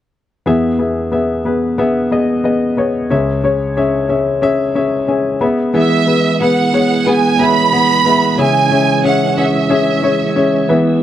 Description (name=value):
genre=pop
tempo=91 BPM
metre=4/4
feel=straight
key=E major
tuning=A4 = 437 Hz
part: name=warm concert grand piano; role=accompaniment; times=0.5-11.0 s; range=C#2 to B5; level=-13 LUFS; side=left 2 dB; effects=none
part: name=tonewheel organ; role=sustained chords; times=5.7-11.0 s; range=E3 to C#4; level=-18 LUFS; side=right 4 dB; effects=chorus vibrato, slow rotary speaker
part: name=clear studio violin section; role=melody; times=5.8-10.7 s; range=E5 to B5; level=-15 LUFS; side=right 6 dB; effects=none
room=studio ambience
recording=dry, close 1970s-style studio recording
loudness=-12 LUFS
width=side -11 dB against mid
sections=0.5-5.7 A section; 5.7-11.0 B section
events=grand piano fill 4.4-5.7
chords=0.5 E; 3.1 C#m; 5.4 E; 8.4 C#m